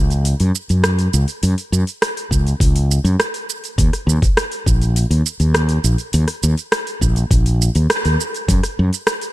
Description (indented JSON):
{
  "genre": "sunset chillout",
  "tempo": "102 BPM",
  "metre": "4/4",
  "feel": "straight",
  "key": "F# major",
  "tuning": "A4 = 440 Hz",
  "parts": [
    { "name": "fretless electric bass", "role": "bass", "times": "0.0-8.9 s", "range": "A#1 to F#2", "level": "-15 LUFS", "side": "equal", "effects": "none" },
    { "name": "deep house drum kit", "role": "drums", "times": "0.1-9.3 s", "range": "hi-hat, rim click, shaker", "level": "-21 LUFS", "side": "right 1 dB", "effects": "overdrive" },
    { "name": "electronic kick drum", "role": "drums", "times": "2.3-8.6 s", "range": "none", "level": "-16 LUFS", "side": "equal", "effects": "none" }
  ],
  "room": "digital ambience",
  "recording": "none",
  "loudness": "-15 LUFS",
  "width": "side -16 dB against mid",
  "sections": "0.0-8.5 A section",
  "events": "band accent 7.9",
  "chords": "none"
}